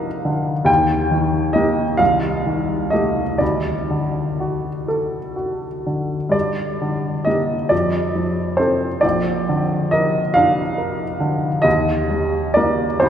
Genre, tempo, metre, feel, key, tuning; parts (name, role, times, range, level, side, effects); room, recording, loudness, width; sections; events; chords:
classical, romantic nocturne for solo piano; 40-48 BPM (dotted quarters); 12/8; rubato; A4 = 444 Hz
warm upright piano; solo; 0.0-13.1 s; Bb1 to G5; -17 LUFS; equal
wet cathedral reverb, RT60 5.0 s; recorded in a church or concert hall; -17 LUFS; side -9 dB against mid
0.0-13.1 A section
0.0 Bb; 0.7 Eb; 2.0 Am7b5/C; 3.4 D; 6.3 Gm; 7.7 F; 9.0 Bb; 11.7 Eb